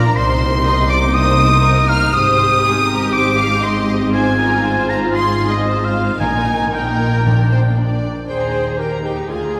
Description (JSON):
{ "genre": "classical", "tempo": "119 BPM", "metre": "4/4", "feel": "straight", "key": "Eb major", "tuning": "A4 = 440 Hz", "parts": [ { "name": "clear studio violin section", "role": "melody", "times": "0.0-9.6 s", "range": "Ab4 to Bb5", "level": "-27 LUFS", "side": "equal", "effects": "none" }, { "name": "clear oboe", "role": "second line", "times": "0.0-7.8 s", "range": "Eb5 to Eb6", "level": "-21 LUFS", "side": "equal", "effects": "none" }, { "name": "clear symphonic violin section", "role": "second line", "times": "0.0-9.6 s", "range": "G4 to F6", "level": "-25 LUFS", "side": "equal", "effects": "none" }, { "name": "clear symphonic viola section", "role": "accompaniment", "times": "0.0-9.6 s", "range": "Bb3 to Ab4", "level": "-24 LUFS", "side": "equal", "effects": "none" }, { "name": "dark symphonic cello section", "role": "bass", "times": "0.0-9.6 s", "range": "D2 to C3", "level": "-23 LUFS", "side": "equal", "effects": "none" }, { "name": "warm studio double bass section", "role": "bass", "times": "0.0-9.6 s", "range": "Ab1 to Eb2", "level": "-23 LUFS", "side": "equal", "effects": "none" }, { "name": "timpani", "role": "percussion", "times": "6.2-8.0 s", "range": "Bb2", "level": "-25 LUFS", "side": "equal", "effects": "none" }, { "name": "warm clarinet", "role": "second line", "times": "8.3-9.6 s", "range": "G4 to C5", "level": "-24 LUFS", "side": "equal", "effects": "none" } ], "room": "wet church reverb, RT60 3.4 s", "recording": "recorded in a church or concert hall", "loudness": "-16 LUFS", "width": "mono", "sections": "0.0-8.3 A section; 8.3-9.6 B section", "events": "none", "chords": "0.2 Cm7; 2.1 Abmaj7; 4.1 Fm/Ab; 6.2 Eb/Bb; 7.3 Bb; 8.3 Eb" }